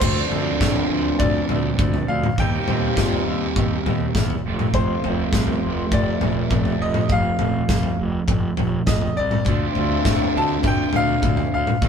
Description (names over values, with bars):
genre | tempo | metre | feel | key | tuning
indie rock | 102 BPM | 4/4 | straight | unclear | A4 = 440 Hz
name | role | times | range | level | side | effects
bright upright piano | melody | 0.0-11.9 s | C5 to A5 | -26 LUFS | left 2 dB | none
electric guitar through a small old amp | riff | 0.0-11.9 s | F2 to A4 | -26 LUFS | equal | none
sludgy distorted guitar | riff | 0.0-11.9 s | D3 to F4 | -27 LUFS | right 5 dB | overdrive
fuzz fingered electric bass | bass | 0.0-11.9 s | F1 to Bb2 | -27 LUFS | equal | overdrive
loose indie drum kit | drums | 0.0-11.9 s | crash cymbal, kick drum, snare drum, toms | -21 LUFS | left 1 dB | none
room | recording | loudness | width
moderate stone room reverb, RT60 1.3 s | band playing live in one room | -18 LUFS | side -7 dB against mid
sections
0.0-11.9 A section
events
none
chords
0.0 Dm7; 2.4 Eb6; 4.5 F; 9.5 Dm7